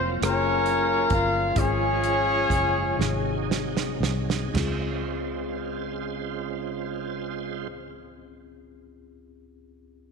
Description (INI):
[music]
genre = slow gospel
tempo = 37-46 BPM (dotted quarters)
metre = 6/8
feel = straight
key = Db major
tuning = A4 = 436 Hz
[part]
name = warm horn section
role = melody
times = 0.0-3.5 s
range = C4 to F5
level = -23 LUFS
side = left 2 dB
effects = none
[part]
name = mellow tine electric piano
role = accompaniment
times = 0.0-10.1 s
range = Db2 to Ab4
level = -33 LUFS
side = left 9 dB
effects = medium stereo tremolo
[part]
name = bright tonewheel organ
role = sustained chords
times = 0.0-7.7 s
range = C3 to C5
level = -33 LUFS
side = right 9 dB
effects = fast rotary speaker, overdrive, chorus vibrato
[part]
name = fingered electric bass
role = bass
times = 0.0-7.7 s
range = F1 to Db2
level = -30 LUFS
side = equal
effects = none
[part]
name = warm soul drum kit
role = drums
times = 0.2-4.8 s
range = crash cymbal, hi-hat, kick drum, rim click, snare drum, toms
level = -29 LUFS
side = right 4 dB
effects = none
[sound]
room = moderate echo chamber reverb, RT60 2.7 s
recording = 1960s-style stereo with parts hard left and right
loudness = -23 LUFS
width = side -5 dB against mid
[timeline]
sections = 0.0-4.5 A section; 4.5-7.8 B section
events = slowing down 0.0-4.5; drum fill 3.0-4.5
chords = 0.0 Gbmaj7; 1.6 Db/Ab; 3.0 Ab7; 4.5 Dbmaj7